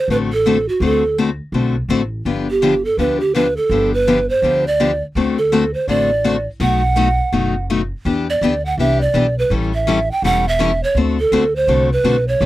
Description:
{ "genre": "acoustic string swing (jazz manouche)", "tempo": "166 BPM", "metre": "4/4", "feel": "swing 61% on 8ths", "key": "D mixolydian", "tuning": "A4 = 438 Hz", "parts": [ { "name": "breathy mellow pan flute", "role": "melody", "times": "0.0-12.5 s", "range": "F#4 to G5", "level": "-16 LUFS", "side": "right 2 dB", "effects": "none" }, { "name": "picked steel-string acoustic guitar", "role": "accompaniment", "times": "0.1-12.5 s", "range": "B2 to A4", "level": "-18 LUFS", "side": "left 4 dB", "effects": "none" }, { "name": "upright bass", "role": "bass", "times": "0.1-12.5 s", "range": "E1 to E2", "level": "-22 LUFS", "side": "equal", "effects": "none" } ], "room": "little or no reverb", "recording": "dry, close 1970s-style studio recording", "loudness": "-14 LUFS", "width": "side -15 dB against mid", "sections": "0.0-12.5 A section", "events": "none", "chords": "0.0 D7; 2.3 G7; 5.2 D7; 6.6 B7; 8.1 Em7; 9.5 A7; 11.0 D7", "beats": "0.09 0.45 | 0.81 1.18 1.54 1.90 | 2.26 2.62 2.98 3.35 | 3.71 4.07 4.43 4.79 | 5.16 5.52 5.88 6.24 | 6.60 6.97 7.33 7.69 | 8.05 8.41 8.78 9.14 | 9.50 9.87 10.23 10.59 | 10.95 11.32 11.68 12.04 | 12.41" }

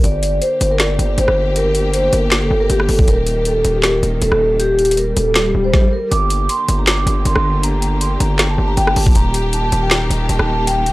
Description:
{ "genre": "hip hop, trap", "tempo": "158 BPM", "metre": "4/4", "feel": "half-time", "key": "G minor", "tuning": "A4 = 440 Hz", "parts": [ { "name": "vibraphone with soft mallets", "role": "melody", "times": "0.0-10.9 s", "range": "G4 to D6", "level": "-18 LUFS", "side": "equal", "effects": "tape echo" }, { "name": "warm studio string section", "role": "sustained chords", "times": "0.0-10.9 s", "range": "D3 to G4", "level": "-24 LUFS", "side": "left 1 dB", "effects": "none" }, { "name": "distorted 808-style bass", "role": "bass", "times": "0.0-10.9 s", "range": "Eb1 to G1", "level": "-18 LUFS", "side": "equal", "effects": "distortion" }, { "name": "trap drum kit", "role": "drums", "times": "0.0-10.9 s", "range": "handclaps, hi-hat, kick drum, rim click, snare drum", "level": "-17 LUFS", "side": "equal", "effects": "none" }, { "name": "swell", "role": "sound effects", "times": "4.9-6.1 s", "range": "none", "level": "-24 LUFS", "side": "left 1 dB", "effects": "none" } ], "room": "little or no reverb", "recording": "dry, gritty hardware recording, transformer saturation", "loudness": "-13 LUFS", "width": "side -19 dB against mid", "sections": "0.0-6.1 A section; 6.1-10.9 B section", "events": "swell 4.9-6.1", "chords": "0.0 Gm; 3.1 Eb; 6.1 Gm; 9.2 Eb", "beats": "| 0.04 0.42 0.80 1.18 | 1.56 1.94 2.32 2.70 | 3.08 3.46 3.84 4.22 | 4.60 4.98 5.36 5.74 | 6.12 6.50 6.88 7.25 | 7.63 8.01 8.39 8.77 | 9.15 9.53 9.91 10.29 | 10.67" }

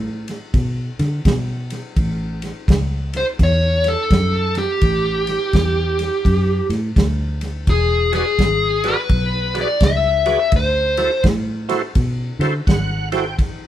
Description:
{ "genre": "electric blues shuffle", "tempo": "84 BPM", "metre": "4/4", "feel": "swing 63% on 8ths", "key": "unclear", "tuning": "A4 = 440 Hz", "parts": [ { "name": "fingered electric bass", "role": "bass", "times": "0.0-13.7 s", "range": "E1 to D3", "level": "-21 LUFS", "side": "equal", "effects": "none" }, { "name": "warm soul drum kit", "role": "drums", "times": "0.3-13.6 s", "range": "kick drum, ride cymbal, snare drum", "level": "-20 LUFS", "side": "equal", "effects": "none" }, { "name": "dark smooth lead guitar", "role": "melody", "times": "3.2-11.2 s", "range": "G4 to E5", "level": "-18 LUFS", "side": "left 1 dB", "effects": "overdrive" }, { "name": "overdriven tonewheel organ", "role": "accompaniment", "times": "8.1-13.4 s", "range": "E4 to G5", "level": "-22 LUFS", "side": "right 4 dB", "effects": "chorus vibrato, slow rotary speaker" } ], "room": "moderate studio reverb, RT60 0.8 s", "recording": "band playing live in one room", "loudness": "-16 LUFS", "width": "side -12 dB against mid", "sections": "0.0-13.7 A section", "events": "tonewheel organ fill 12.3-13.4", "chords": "0.0 N.C.; 2.0 A7; 7.7 E7; 10.5 D7", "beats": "0.54 1.25 | 1.97 2.68 3.40 4.11 | 4.82 5.54 6.25 6.96 | 7.68 8.39 9.10 9.82 | 10.53 11.24 11.96 12.67 | 13.38" }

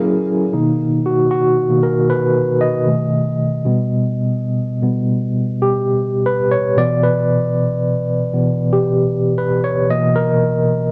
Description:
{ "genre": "R&B", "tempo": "77 BPM", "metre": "4/4", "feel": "swing 64% on 16ths", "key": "unclear", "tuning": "A4 = 441 Hz", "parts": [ { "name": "barky tine electric piano", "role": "accompaniment", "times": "0.0-10.9 s", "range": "B2 to D#5", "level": "-17 LUFS", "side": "equal", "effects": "overdrive, medium tremolo" } ], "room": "moderate spring reverb, RT60 1.3 s, studio reverb", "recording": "home recording on cassette", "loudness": "-17 LUFS", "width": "mono", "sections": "0.5-10.9 A section", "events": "tine electric piano solo 0.5-10.9", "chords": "0.0 F#7; 0.5 Bmaj7; 2.9 B7; 3.6 G/B; 6.8 Bmadd11; 9.9 Bmaj7", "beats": "| 0.53 1.31 2.09 2.87 | 3.65 4.42 5.20 5.98 | 6.76 7.54 8.32 9.10 | 9.88 10.66" }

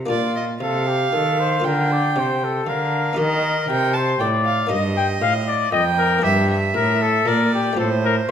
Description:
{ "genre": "classical, baroque-style sonata movement with continuo", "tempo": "117 BPM", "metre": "3/4", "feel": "straight", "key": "Bb major", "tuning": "A4 = 440 Hz", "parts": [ { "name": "buff-stop harpsichord", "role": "accompaniment", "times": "0.0-8.3 s", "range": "F2 to G4", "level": "-28 LUFS", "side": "left 1 dB", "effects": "none" }, { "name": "rich cello", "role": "bass", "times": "0.0-8.3 s", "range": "F2 to Eb3", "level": "-22 LUFS", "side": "right 1 dB", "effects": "none" }, { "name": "mellow trumpet", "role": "melody", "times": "0.1-8.3 s", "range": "F4 to G5", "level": "-22 LUFS", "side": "left 6 dB", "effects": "none" }, { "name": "rich violin", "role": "second line", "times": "0.1-8.3 s", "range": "C5 to A5", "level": "-23 LUFS", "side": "right 5 dB", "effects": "none" } ], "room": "wet recital hall reverb, RT60 1.4 s", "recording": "none", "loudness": "-17 LUFS", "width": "side -8 dB against mid", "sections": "0.1-8.3 A section", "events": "none", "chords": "0.1 Bb; 3.2 Eb; 4.7 Eb/G; 6.2 C7/G; 7.8 F/A", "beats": "| 0.09 0.61 1.13 | 1.65 2.16 2.67 | 3.18 3.70 4.21 | 4.71 5.22 5.73 | 6.24 6.75 7.26 | 7.78 8.29" }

